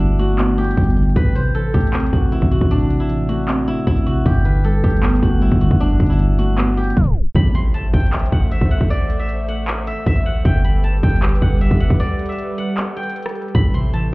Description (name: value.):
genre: hip hop, trap.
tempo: 155 BPM.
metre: 4/4.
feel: half-time.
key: A dorian.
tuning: A4 = 440 Hz.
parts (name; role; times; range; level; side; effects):
steel-string zither; melody; 0.0-14.1 s; D4 to C6; -24 LUFS; equal; none.
muted felt-like synth keys; accompaniment; 0.0-7.4, 13.6-14.1 s; G2 to C4; -19 LUFS; equal; chorus, tremolo.
warm 808-style bass; bass; 0.0-14.1 s; G1 to A1; -18 LUFS; equal; none.
trap drum kit; drums; 0.0-14.0 s; handclaps, hi-hat, kick drum, rim click; -18 LUFS; equal; none.
airy breathy pad; sustained chords; 7.4-14.1 s; G3 to E5; -26 LUFS; right 1 dB; chorus.
impact; sound effects; 7.4-8.9 s; none; -25 LUFS; equal; none.
room: little or no reverb.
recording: heard muffled through a wall, club reverb, EQ, tape stop.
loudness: -15 LUFS.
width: side -23 dB against mid.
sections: 0.0-7.4 A section; 7.4-14.1 B section.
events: tape stop 7.0-7.4; impact 7.4-8.9; break 12.0-13.5.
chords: 0.0 Gadd9; 1.2 Am; 4.3 Gadd9; 7.4 Am; 10.5 Gadd9; 13.5 Am.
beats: 0.00 0.39 0.77 | 1.16 1.55 1.94 2.32 | 2.71 3.10 3.48 3.87 | 4.26 4.64 5.03 5.42 | 5.81 6.19 6.58 6.97 | 7.35 7.74 8.13 8.52 | 8.90 9.29 9.68 10.06 | 10.45 10.84 11.22 11.61 | 12.00 12.39 12.77 13.16 | 13.55 13.94.